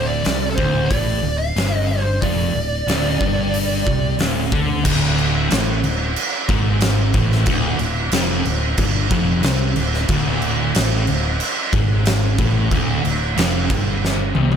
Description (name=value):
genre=stoner and doom metal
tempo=91 BPM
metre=4/4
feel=straight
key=unclear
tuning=A4 = 440 Hz
part: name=fuzz lead guitar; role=melody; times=0.0-4.2 s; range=A4 to F5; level=-23 LUFS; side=right 2 dB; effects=distortion, ping-pong delay
part: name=fuzz guitar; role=riff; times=0.0-14.6 s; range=D2 to D3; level=-21 LUFS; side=equal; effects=distortion
part: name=fingered electric bass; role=bass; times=0.0-14.6 s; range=D1 to D2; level=-22 LUFS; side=equal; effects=overdrive
part: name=oversized low-tuned drum kit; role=drums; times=0.2-14.6 s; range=crash cymbal, hi-hat, kick drum, snare drum, toms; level=-20 LUFS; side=equal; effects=none
room=small room ambience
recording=none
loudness=-16 LUFS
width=side -8 dB against mid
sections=0.0-4.8 A section; 4.8-14.6 B section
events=drum fill 14.0-14.6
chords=0.0 Dm